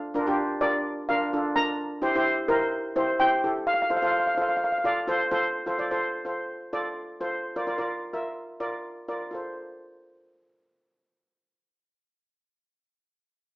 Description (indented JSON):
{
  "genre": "calypso",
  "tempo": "127 BPM",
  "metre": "4/4",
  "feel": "straight",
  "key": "F major",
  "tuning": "A4 = 439 Hz",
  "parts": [
    { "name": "steel pan", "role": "accompaniment", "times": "0.1-12.4 s", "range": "D4 to E5", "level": "-27 LUFS", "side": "equal", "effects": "none" },
    { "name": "steel pan", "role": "melody", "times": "0.6-4.9 s", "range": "Bb4 to Bb5", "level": "-24 LUFS", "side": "equal", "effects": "none" }
  ],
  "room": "wet large studio reverb, RT60 0.9 s",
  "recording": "band playing live in one room, small speaker sound",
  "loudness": "-24 LUFS",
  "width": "side -22 dB against mid",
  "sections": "0.0-5.5 A section; 5.5-9.3 B section; 9.3-13.1 C section",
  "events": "none",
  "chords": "0.0 Bb; 1.8 C7; 3.7 F6; 7.4 Bb; 9.3 F"
}